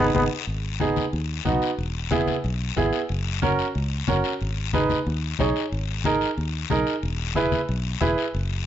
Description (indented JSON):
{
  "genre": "latin, cumbia",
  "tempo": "183 BPM",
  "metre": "4/4",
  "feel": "straight",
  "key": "G# minor",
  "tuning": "A4 = 440 Hz",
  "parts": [
    { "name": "clear upright piano", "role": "accompaniment", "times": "0.0-8.2 s", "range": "B3 to C#5", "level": "-24 LUFS", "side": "right 3 dB", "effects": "none" },
    { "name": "fingered electric bass", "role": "bass", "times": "0.0-8.7 s", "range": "E1 to D#2", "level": "-27 LUFS", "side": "equal", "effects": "none" },
    { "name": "congas", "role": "percussion", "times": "0.1-8.2 s", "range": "none", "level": "-28 LUFS", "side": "left 5 dB", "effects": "none" },
    { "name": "guiro", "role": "percussion", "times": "0.2-8.7 s", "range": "none", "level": "-33 LUFS", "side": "left 12 dB", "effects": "none" }
  ],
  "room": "light reverb",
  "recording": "nothing above 7.7 kHz",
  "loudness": "-22 LUFS",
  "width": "side -10 dB against mid",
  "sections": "0.5-8.7 A section",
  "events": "upright piano fill 0.0-0.5; band accent 0.0-0.5",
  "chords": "0.5 G#m; 1.8 E; 3.1 F#; 4.4 G#m; 7.0 E"
}